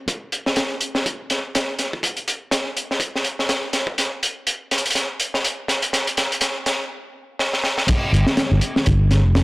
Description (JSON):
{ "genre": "breakbeat, breaks", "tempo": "123 BPM", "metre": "4/4", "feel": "swing 58% on 16ths", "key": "unclear", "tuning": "A4 = 439 Hz", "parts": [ { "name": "crunchy breakbeat drum kit", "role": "drums", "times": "0.1-9.4 s", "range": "crash cymbal, hi-hat, kick drum, snare drum", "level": "-20 LUFS", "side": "equal", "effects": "high-pass filter on kick, high-pass filter on hats, high-pass filter on cymbals, high-pass filter on snare, high-pass filter on room" }, { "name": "fingered electric bass", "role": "bass", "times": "8.1-9.4 s", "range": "F1 to G1", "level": "-15 LUFS", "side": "equal", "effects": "tube saturation" } ], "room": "light reverb", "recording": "dry, gritty hardware recording", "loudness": "-19 LUFS", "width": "side -24 dB against mid", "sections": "0.1-7.9 A section; 7.9-9.4 B section", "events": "build-up 0.1-7.9; drum fill 4.0-6.9, 7.4-7.9; drop 7.9-9.4", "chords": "none" }